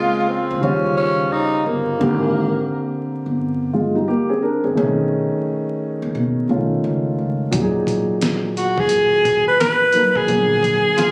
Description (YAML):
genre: hip hop, jazz-hop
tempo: 87 BPM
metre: 4/4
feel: swing 63% on 16ths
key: unclear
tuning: A4 = 441 Hz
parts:
  - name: breathy alto saxophone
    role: melody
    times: 0.0-1.2, 8.6-11.1 s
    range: F4 to B4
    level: -19 LUFS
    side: equal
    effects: none
  - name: growling tenor saxophone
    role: second line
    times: 0.0-3.0, 11.0-11.1 s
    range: Ab3 to F4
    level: -24 LUFS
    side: equal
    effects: none
  - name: dark grand piano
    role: accompaniment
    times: 0.0-11.1 s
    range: A#2 to C5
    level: -22 LUFS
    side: equal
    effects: none
  - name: upright bass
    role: bass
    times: 0.5-10.8 s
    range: G1 to B2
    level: -27 LUFS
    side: equal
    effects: none
  - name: dusty soul sampler-style drum kit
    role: drums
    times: 7.5-11.1 s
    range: hi-hat, kick drum, snare drum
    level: -26 LUFS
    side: equal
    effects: overdrive
room: light reverb, small room reverb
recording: recorded on a phone in the room, club reverb, vinyl crackle, compression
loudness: -19 LUFS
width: mono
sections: 0.0-11.1 A section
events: none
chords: 0.0 Bbm9; 0.6 Eb13; 2.0 Abmaj9#11; 4.8 B13; 7.5 Emaj9#11; 10.3 Bb7b13